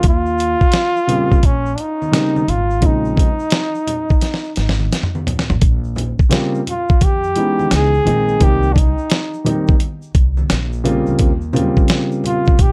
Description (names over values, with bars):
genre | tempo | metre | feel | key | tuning
hip hop, jazz-hop | 86 BPM | 4/4 | swing 66% on 16ths | Bb dorian | A4 = 440 Hz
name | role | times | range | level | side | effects
breathy flugelhorn | melody | 0.0-12.7 s | Db4 to Ab4 | -21 LUFS | equal | none
upright bass | bass | 0.0-12.7 s | Ab1 to F2 | -22 LUFS | equal | none
dusty soul sampler-style drum kit | drums | 0.0-12.7 s | hi-hat, kick drum, snare drum, toms | -17 LUFS | equal | none
tube shaker and congas | percussion | 0.0-12.7 s | none | -31 LUFS | equal | none
dark grand piano | accompaniment | 1.1-12.6 s | Db3 to F4 | -20 LUFS | equal | none
room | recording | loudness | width
light reverb | dark, warm production | -16 LUFS | mono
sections
0.0-5.6 A section; 5.6-12.7 B section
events
drum fill 4.2-5.6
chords
0.0 Eb13; 2.8 Bbm11; 5.6 Bbm69; 7.7 Dbm7; 8.4 Cm7; 10.5 Bbadd9; 11.2 Eb13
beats
| 0.04 0.73 1.43 2.13 | 2.83 3.52 4.22 4.92 | 5.62 6.32 7.01 7.71 | 8.41 9.11 9.80 10.50 | 11.20 11.90 12.59